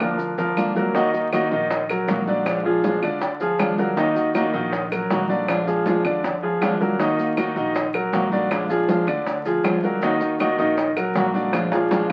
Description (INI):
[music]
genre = latin, Cuban son and guajira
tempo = 159 BPM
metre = 4/4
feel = straight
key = Eb harmonic minor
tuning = A4 = 440 Hz
[part]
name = sitar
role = melody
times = 0.0-0.5 s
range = D4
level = -39 LUFS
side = equal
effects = none
[part]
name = fingerpicked plugged-in swing-style acoustic guitar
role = accompaniment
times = 0.0-12.1 s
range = D3 to Gb4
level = -27 LUFS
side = equal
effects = none
[part]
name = clear grand piano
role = arpeggios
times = 0.0-12.1 s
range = D3 to Eb5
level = -25 LUFS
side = equal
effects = none
[part]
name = upright bass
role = bass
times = 0.0-12.1 s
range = Bb1 to F2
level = -38 LUFS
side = equal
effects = none
[part]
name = bongos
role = percussion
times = 0.0-12.1 s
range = none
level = -30 LUFS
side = equal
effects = none
[part]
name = claves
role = percussion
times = 0.0-12.1 s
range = none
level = -34 LUFS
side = equal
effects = none
[part]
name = congas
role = percussion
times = 0.0-12.1 s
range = none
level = -30 LUFS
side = equal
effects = none
[part]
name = maracas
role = percussion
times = 0.0-12.1 s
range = none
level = -52 LUFS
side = equal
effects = none
[sound]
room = moderate studio reverb, RT60 0.5 s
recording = very old 78 rpm record, vinyl crackle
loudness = -22 LUFS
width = mono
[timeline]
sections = 0.9-12.1 A section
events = drum fill 0.0-0.9, 11.5-12.1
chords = 0.0 Bb; 0.9 Ebm; 2.5 Bb7; 4.0 Ebm; 5.5 Bb7; 7.0 Ebm; 8.5 Bb7; 10.0 Ebm; 11.5 Bb7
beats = 0.19 0.57 | 0.95 1.32 1.70 2.08 | 2.46 2.84 3.21 3.59 | 3.97 4.35 4.73 5.11 | 5.48 5.86 6.24 6.62 | 7.00 7.37 7.75 8.13 | 8.51 8.89 9.26 9.64 | 10.02 10.40 10.78 11.15 | 11.53 11.91